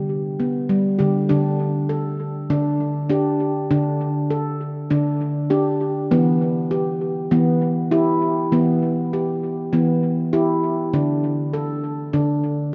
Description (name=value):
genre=world meditative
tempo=100 BPM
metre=4/4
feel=swing 54% on 16ths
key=unclear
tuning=A4 = 440 Hz
part: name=handpan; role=solo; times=0.0-12.7 s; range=D3 to A4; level=-21 LUFS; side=equal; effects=analog delay
room=moderate plate reverb, RT60 3.6 s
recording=echo-heavy mix, nothing above 7.6 kHz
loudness=-21 LUFS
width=mono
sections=0.0-1.3 A section; 1.3-12.7 B section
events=none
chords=0.0 G; 1.3 D5; 6.1 Em; 10.9 D5